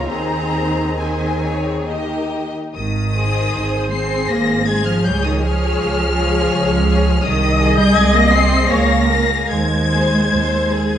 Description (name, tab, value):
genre	classical, slow romantic movement for string orchestra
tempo	66-84 BPM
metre	3/4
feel	rubato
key	Ab major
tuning	A4 = 441 Hz
part	rich studio violin section	melody	0.0-11.0 s	Ab5 to C7	-22 LUFS	left 4 dB	none
part	rich studio violin section	second line	0.0-11.0 s	G4 to F5	-23 LUFS	left 3 dB	none
part	rich studio viola section	accompaniment	0.0-11.0 s	Bb3 to Eb5	-23 LUFS	left 1 dB	none
part	rich studio double bass section	bass	0.0-11.0 s	Ab1 to Eb2	-19 LUFS	right 2 dB	none
part	warm studio cello section	bass	0.0-11.0 s	Eb3 to C4	-20 LUFS	right 1 dB	none
room	moderate scoring stage reverb, RT60 1.6 s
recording	nothing above 10.3 kHz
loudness	-14 LUFS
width	side -10 dB against mid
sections	0.0-2.8 A section; 2.8-11.0 B section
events	none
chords	0.1 Ab/Eb; 1.9 Eb; 2.8 Ab; 5.1 Db; 7.2 Ab/C; 8.7 Db; 9.5 Ab/Eb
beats	| 0.09 0.99 1.88 | 2.75 3.55 4.31 | 5.06 5.80 6.52 | 7.24 7.96 8.71 | 9.51 10.31